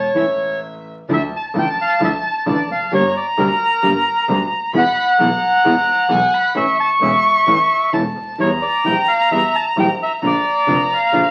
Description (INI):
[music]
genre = tango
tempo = 131 BPM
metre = 4/4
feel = rubato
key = D harmonic minor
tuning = A4 = 437 Hz
[part]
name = bandoneon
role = melody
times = 0.0-11.3 s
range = Bb4 to A5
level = -20 LUFS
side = equal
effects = none
[part]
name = warm violin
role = second line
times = 0.0-11.3 s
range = E5 to C#6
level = -21 LUFS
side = equal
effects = none
[part]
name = clear double bass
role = bass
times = 0.0-11.3 s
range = E1 to E2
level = -28 LUFS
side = equal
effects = none
[part]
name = nylon-string guitar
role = accompaniment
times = 0.1-11.2 s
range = B2 to G4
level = -23 LUFS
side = equal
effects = none
[sound]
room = wet studio reverb, RT60 0.6 s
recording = very old 78 rpm record, vinyl crackle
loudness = -17 LUFS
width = mono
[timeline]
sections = 0.0-1.1 A section; 1.1-11.3 B section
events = none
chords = 0.0 A; 1.1 Dmadd9; 2.9 Gm; 4.7 E; 6.6 A; 8.4 Edim; 10.2 Bbmaj7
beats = 0.15 0.62 | 1.09 1.55 2.01 2.47 | 2.92 3.38 3.83 4.29 | 4.74 5.19 5.65 6.10 | 6.55 7.01 7.47 7.93 | 8.40 8.86 9.32 9.78 | 10.23 10.68 11.13